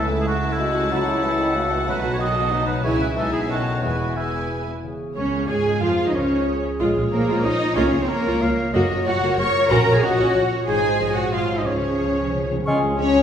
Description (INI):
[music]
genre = classical, dramatic, fast romantic movement for symphony orchestra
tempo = 185 BPM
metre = 3/4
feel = straight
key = E major, Db major from 4.8 s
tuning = A4 = 438 Hz
[part]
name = warm symphonic violin section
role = melody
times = 0.0-13.2 s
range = Db4 to A5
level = -31 LUFS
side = left 4 dB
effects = none
[part]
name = rich symphonic violin section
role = second line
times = 0.0-13.2 s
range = Db4 to Db6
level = -29 LUFS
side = left 2 dB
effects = none
[part]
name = warm clarinet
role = second line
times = 0.0-12.8 s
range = Db4 to F5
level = -31 LUFS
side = equal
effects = none
[part]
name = warm oboe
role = second line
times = 0.0-12.8 s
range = E4 to Db6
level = -28 LUFS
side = equal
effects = none
[part]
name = warm bassoon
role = accompaniment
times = 0.0-4.7, 12.7-12.8 s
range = C#3 to A3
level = -29 LUFS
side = right 2 dB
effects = none
[part]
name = warm symphonic viola section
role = accompaniment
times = 0.0-13.2 s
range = Db3 to Ab4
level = -26 LUFS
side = right 1 dB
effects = none
[part]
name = dark French horn section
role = sustained chords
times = 0.0-13.2 s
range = G#3 to Db5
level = -28 LUFS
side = left 2 dB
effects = none
[part]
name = concert harp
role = arpeggios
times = 0.0-13.2 s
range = Gb2 to Db5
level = -29 LUFS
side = left 3 dB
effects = none
[part]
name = rich symphonic cello section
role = bass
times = 0.0-13.2 s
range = C#2 to Db5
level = -25 LUFS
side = right 2 dB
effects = none
[part]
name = warm symphonic double bass section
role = bass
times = 0.0-13.2 s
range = E1 to Ab2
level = -28 LUFS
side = right 1 dB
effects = none
[part]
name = timpani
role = percussion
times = 11.7-12.7 s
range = Db3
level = -30 LUFS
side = right 1 dB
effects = none
[part]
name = silver concert flute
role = second line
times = 12.7-12.8 s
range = Db6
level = -32 LUFS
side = equal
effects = none
[part]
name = clear trombone section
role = sustained chords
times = 12.7-13.2 s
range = F3 to Db4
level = -27 LUFS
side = right 1 dB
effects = none
[part]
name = mellow trumpet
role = stabs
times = 12.7-13.2 s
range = Ab4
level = -24 LUFS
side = equal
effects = none
[sound]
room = wet recital hall reverb, RT60 1.2 s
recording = recorded in a church or concert hall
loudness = -18 LUFS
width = side -8 dB against mid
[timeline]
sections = 0.0-4.8 A section; 4.8-12.7 B section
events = timpani fill 11.7-12.7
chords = 0.0 A/C#; 0.9 F#m7/C#; 1.9 B7; 2.9 C#m; 3.2 E/B; 3.5 B9; 3.8 E; 4.8 Db; 6.8 Bbm7; 7.8 Bbm/Db; 8.7 Gbmaj7; 9.7 Gb/Bb; 10.7 Ab; 11.0 Bbm7; 11.3 Ab7; 11.7 Db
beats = 0.27 0.59 | 0.92 1.24 1.56 | 1.89 2.21 2.53 | 2.85 3.17 3.50 | 3.83 4.16 4.50 | 4.83 5.16 5.49 | 5.82 6.15 6.47 | 6.80 7.12 7.44 | 7.77 8.09 8.42 | 8.74 9.06 9.38 | 9.71 10.03 10.35 | 10.68 11.00 11.33 | 11.66 12.00 12.33 | 12.67 12.99